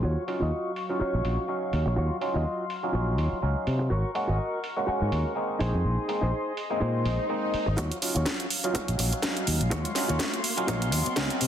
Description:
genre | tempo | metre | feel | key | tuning
filtered disco house | 124 BPM | 4/4 | swing 56% on 16ths | Eb dorian | A4 = 441 Hz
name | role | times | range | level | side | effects
overdriven clav | accompaniment | 0.0-11.5 s | Gb3 to F5 | -32 LUFS | right 1 dB | phaser, sidechain pumping, low-pass filter
warm studio string section | sustained chords | 0.0-11.5 s | Gb3 to Db6 | -36 LUFS | left 3 dB | sidechain pumping, low-pass filter
direct-recorded clean electric guitar | riff | 0.0-11.1 s | Eb4 to Eb5 | -34 LUFS | right 1 dB | sidechain pumping, low-pass filter
fingered electric bass | bass | 0.0-11.5 s | Ab1 to C3 | -27 LUFS | equal | tube saturation, sidechain pumping, low-pass filter
house drum kit | drums | 0.3-11.5 s | hi-hat, snare drum | -31 LUFS | right 1 dB | overdrive, high-pass filter on hats, low-pass filter on hats, high-pass filter on snare, low-pass filter on snare, high-pass filter on room, low-pass filter on room
swell and riser | sound effects | 7.0-11.5 s | none | -35 LUFS | left 1 dB | none
electronic kick drum | drums | 7.8-11.3 s | none | -36 LUFS | equal | overdrive, high-pass filter on kick, high-pass filter on room
room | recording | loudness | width
light reverb, digital ambience | dense, heavily limited modern master, high-pass filter | -25 LUFS | side -10 dB against mid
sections
0.0-7.8 A section; 7.8-11.5 B section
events
filter sweep 0.0-7.8, 7.8-11.5; swell 7.0-7.8; build-up 7.8-11.5; riser 7.8-11.5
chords
0.0 Ebm9; 3.9 Ab9sus4; 5.6 Bb9sus4; 7.8 Ebm9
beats
| 0.04 0.52 1.01 1.49 | 1.97 2.46 2.94 3.43 | 3.91 4.39 4.88 5.36 | 5.84 6.33 6.81 7.30 | 7.78 8.26 8.75 9.23 | 9.72 10.20 10.68 11.17

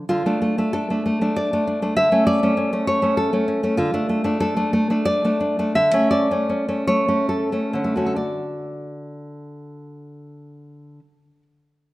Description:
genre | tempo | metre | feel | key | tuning
romantic piece for solo classical guitar | 63-101 BPM | 3/4 | rubato | unclear | A4 = 440 Hz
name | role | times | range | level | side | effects
nylon-string guitar | solo | 0.0-11.4 s | D3 to E5 | -19 LUFS | equal | none
room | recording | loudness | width
moderate recital hall reverb, RT60 1.5 s | none | -18 LUFS | side -18 dB against mid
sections
0.1-8.2 A section; 8.2-11.9 B section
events
slowing down 2.9-8.2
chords
0.1 Dm; 2.0 A/D; 3.8 Dm; 5.7 A/D; 8.2 D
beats
| 0.09 0.73 1.36 | 1.97 2.57 3.17 | 3.77 4.40 5.06 | 5.74 6.48 7.29 | 8.17 8.96 9.74 | 10.53 11.35

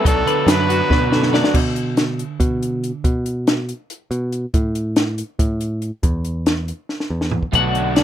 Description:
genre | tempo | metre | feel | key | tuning
math rock and midwest emo | 281 BPM (eighths) | 7/8 | straight | unclear | A4 = 440 Hz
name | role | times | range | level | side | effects
warm trumpet | melody | 0.0-1.3 s | A4 to B4 | -22 LUFS | equal | plate reverb, analog delay
twelve-string electric guitar | accompaniment | 0.0-3.0, 7.5-8.0 s | F#2 to F#4 | -26 LUFS | right 9 dB | vibrato effect
twelve-string electric guitar | arpeggios | 0.0-1.6, 7.6-8.0 s | F#4 to F#5 | -21 LUFS | left 11 dB | tremolo, plate reverb
raw garage guitar | riff | 0.0-1.5, 7.5-8.0 s | B2 to F#4 | -22 LUFS | right 2 dB | overdrive
picked electric bass | bass | 0.1-8.0 s | B1 to B2 | -22 LUFS | equal | none
compact cocktail drum kit | drums | 0.1-8.0 s | crash cymbal, hi-hat, kick drum, snare drum, toms | -18 LUFS | equal | none
room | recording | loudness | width
little or no reverb | rough home demo mix | -17 LUFS | side -11 dB against mid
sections
0.0-1.5 A section; 1.5-8.0 B section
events
drum fill 0.9-1.5, 6.9-7.5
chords
0.1 Bm7; 1.5 Bm; 4.5 N.C.; 7.5 Bm7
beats
| 0.05 0.27 0.48 0.69 0.91 1.12 1.33 | 1.55 1.76 1.97 2.19 2.40 2.62 2.83 | 3.04 3.26 3.47 3.69 3.90 4.11 4.33 | 4.54 4.75 4.97 5.18 5.40 5.61 5.82 | 6.04 6.25 6.47 6.68 6.89 7.11 7.32 | 7.53 7.75 7.96

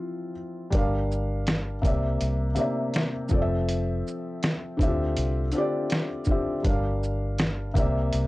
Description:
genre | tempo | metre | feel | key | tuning
lo-fi hip hop | 81 BPM | 4/4 | swing 59% on 16ths | unclear | A4 = 440 Hz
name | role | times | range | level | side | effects
felt-muted upright piano | accompaniment | 0.0-8.3 s | C3 to F5 | -28 LUFS | left 1 dB | cassette tape
vintage muted fingered electric bass | bass | 0.7-8.3 s | F1 to D2 | -27 LUFS | equal | tube saturation
trip hop sampler-style drum kit | drums | 0.7-8.3 s | hi-hat, kick drum, shaker, snare drum | -26 LUFS | equal | vintage 12-bit sampler grit
room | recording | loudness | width
little or no reverb | dry, gritty hardware recording | -24 LUFS | side -19 dB against mid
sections
0.7-8.3 A section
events
break 0.0-0.7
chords
0.0 Cadd11/F; 0.7 Gm7; 1.8 C9; 3.3 Fmaj7; 4.8 Dm11; 6.6 Gm7; 7.8 C9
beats
| 0.72 1.46 2.20 2.94 | 3.68 4.42 5.17 5.91 | 6.65 7.39 8.13

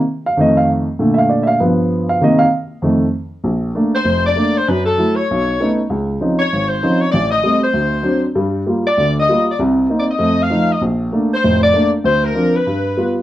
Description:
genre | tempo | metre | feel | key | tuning
jazz | 195 BPM | 4/4 | swing 60% on 8ths | Bb major | A4 = 440 Hz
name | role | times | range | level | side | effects
warm baby grand piano | accompaniment | 0.3-13.2 s | F1 to F5 | -15 LUFS | right 1 dB | none
clear saxophone section | melody | 4.0-13.2 s | A4 to F5 | -17 LUFS | left 2 dB | plate reverb
room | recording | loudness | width
moderate club reverb, RT60 0.8 s | worn, warbling old tape, cassette tape, warbly pitch drift | -13 LUFS | side -14 dB against mid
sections
0.0-3.4 A section; 3.4-13.2 B section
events
grand piano solo 0.0-3.4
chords
0.4 F7; 1.0 Bbmaj7; 1.6 G7; 2.2 Cm7; 2.8 F7; 3.4 Bbmaj7; 4.7 Gbm7; 5.3 B9; 5.9 Dbmaj9; 7.1 Am7b5; 7.7 D7; 8.3 Gm7; 9.6 Cm7; 10.2 F7; 10.8 Bbmaj7; 12.0 Bbadd9/D; 12.6 G7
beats
0.07 0.37 0.68 | 0.98 1.29 1.59 1.90 | 2.21 2.51 2.82 3.12 | 3.43 3.74 4.04 4.35 | 4.66 4.96 5.27 5.58 | 5.88 6.19 6.50 6.80 | 7.11 7.42 7.73 8.03 | 8.34 8.65 8.96 9.26 | 9.57 9.88 10.19 10.49 | 10.80 11.11 11.42 11.72 | 12.03 12.34 12.65 12.95

